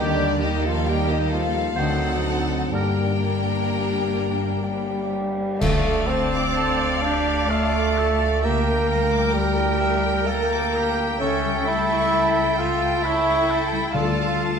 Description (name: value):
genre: classical, slow romantic movement for symphony orchestra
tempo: 65 BPM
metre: 3/4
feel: uneven beats, rubato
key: G minor, D minor from 5.6 s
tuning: A4 = 439 Hz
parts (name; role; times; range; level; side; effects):
- rich studio violin section; melody; 0.0-14.6 s; G4 to A5; -31 LUFS; left 1 dB; none
- clear chamber violin section; second line; 0.0-14.6 s; D5 to D6; -32 LUFS; left 2 dB; none
- clear oboe; second line; 0.0-14.6 s; F4 to C#5; -30 LUFS; right 1 dB; none
- mellow clarinet; second line; 0.0-14.6 s; D4 to F5; -29 LUFS; left 3 dB; none
- mellow hollow small flute group; second line; 0.0-5.1 s; D5 to G5; -30 LUFS; left 4 dB; none
- rich chamber viola section; accompaniment; 0.0-14.6 s; G3 to D5; -30 LUFS; right 1 dB; none
- warm bassoon; accompaniment; 0.0-14.6 s; D3 to F4; -25 LUFS; right 3 dB; none
- mellow French horn section; sustained chords; 0.0-14.3 s; D3 to F5; -31 LUFS; left 5 dB; none
- concert harp; arpeggios; 0.0-14.6 s; G2 to F5; -30 LUFS; left 10 dB; none
- rich chamber cello section; bass; 0.0-14.6 s; G2 to F4; -29 LUFS; equal; none
- rich chamber double bass section; bass; 0.0-14.6 s; G1 to Eb2; -28 LUFS; right 3 dB; none
- cymbal swell, clash cymbals and concert bass drum; percussion; 2.7-7.5 s; none; -30 LUFS; right 1 dB; none
- timpani; percussion; 5.6-7.0, 13.9-14.6 s; D3; -30 LUFS; equal; none
room: moderate recital hall reverb, RT60 1.5 s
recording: none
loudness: -19 LUFS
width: side -6 dB against mid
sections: 0.0-5.6 A section; 5.6-14.6 B section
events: band accent 5.6-6.6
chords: 0.0 Eb; 1.8 D7b9; 2.7 Gm; 5.6 Dm; 8.4 Em7b5/D; 11.2 A7/C#; 13.9 Dm